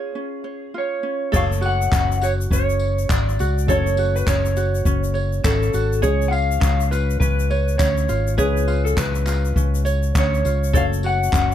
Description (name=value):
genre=acoustic pop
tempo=102 BPM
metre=4/4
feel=swing 60% on 16ths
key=F# harmonic minor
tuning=A4 = 440 Hz
part: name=electric slide guitar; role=melody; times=0.0-11.5 s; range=G#4 to F#5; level=-24 LUFS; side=equal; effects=none
part: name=ukulele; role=accompaniment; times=0.0-11.5 s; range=C#4 to C#5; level=-26 LUFS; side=right 1 dB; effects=none
part: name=dark upright piano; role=accompaniment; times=1.3-11.5 s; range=G#3 to C#6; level=-32 LUFS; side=left 7 dB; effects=none
part: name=fingered electric bass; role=bass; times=1.3-11.5 s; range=F#1 to D2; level=-21 LUFS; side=equal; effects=none
part: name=jazz brush drum kit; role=drums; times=1.3-11.5 s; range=crash cymbal, handclaps, kick drum, tambourine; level=-23 LUFS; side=equal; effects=none
part: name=tube shaker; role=percussion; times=1.3-11.5 s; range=none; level=-36 LUFS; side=left 10 dB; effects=none
room=little or no reverb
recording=close, detailed microphones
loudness=-17 LUFS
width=side -11 dB against mid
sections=0.0-1.3 A section; 1.3-11.5 B section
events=break 0.0-1.3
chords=0.0 C#; 1.3 F#m; 6.0 C#; 10.7 F#m